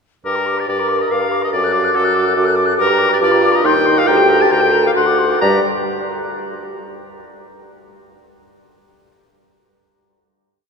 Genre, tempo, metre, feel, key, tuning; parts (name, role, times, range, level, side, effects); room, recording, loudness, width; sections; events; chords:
quick classical-period movement for wind quintet; 140 BPM; 3/4; rubato; G minor; A4 = 441 Hz
silver concert flute; melody; 0.3-5.7 s; D5 to F#6; -20 LUFS; left 5 dB
bright oboe; second line; 0.3-5.6 s; A4 to Bb5; -19 LUFS; left 2 dB
mellow French horn; accompaniment; 0.3-5.6 s; G3 to Bb4; -21 LUFS; equal
mellow clarinet; accompaniment; 0.3-5.6 s; Eb4 to Bb4; -25 LUFS; right 5 dB
mellow bassoon; bass; 0.3-5.6 s; D2 to G2; -18 LUFS; right 2 dB
wet cathedral reverb, RT60 5.0 s; recorded in a church or concert hall; -13 LUFS; side -5 dB against mid
0.3-5.4 A section; 5.4-6.7 final chord
0.3 Gm; 1.5 D/F#; 2.8 Gm; 3.6 Cm/Eb; 4.1 Gm/D; 5.0 D7; 5.4 G5